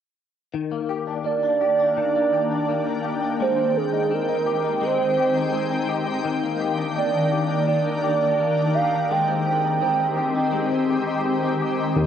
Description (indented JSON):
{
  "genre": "dream pop",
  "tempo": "84 BPM",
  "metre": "4/4",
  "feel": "straight",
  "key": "Eb major",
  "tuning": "A4 = 440 Hz",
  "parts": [
    { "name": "shimmering ambient pad", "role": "sustained chords", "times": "1.5-12.1 s", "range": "Eb3 to G5", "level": "-24 LUFS", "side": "left 2 dB", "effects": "chorus, built-in reverb, cassette tape" },
    { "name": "direct-recorded clean electric guitar", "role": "arpeggios", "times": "0.5-12.1 s", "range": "Eb3 to G4", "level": "-27 LUFS", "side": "left 8 dB", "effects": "ensemble chorus, cassette tape, analog delay" },
    { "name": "warbly nostalgic lead", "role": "melody", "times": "1.3-11.6 s", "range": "Ab4 to G5", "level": "-22 LUFS", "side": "right 5 dB", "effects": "chorus, tremolo, cassette tape, analog delay" },
    { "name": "chorused synth bass", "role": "bass", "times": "12.0-12.1 s", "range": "Eb2", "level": "-18 LUFS", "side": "left 1 dB", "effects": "none" }
  ],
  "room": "moderate spring reverb, RT60 1.6 s, digital ambience",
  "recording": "home recording on cassette",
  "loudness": "-20 LUFS",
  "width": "side -9 dB against mid",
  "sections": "0.5-12.0 A section",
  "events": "none",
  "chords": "0.5 Ebmaj7; 3.4 Abmaj7; 6.2 Ebmaj7; 9.1 Abmaj7"
}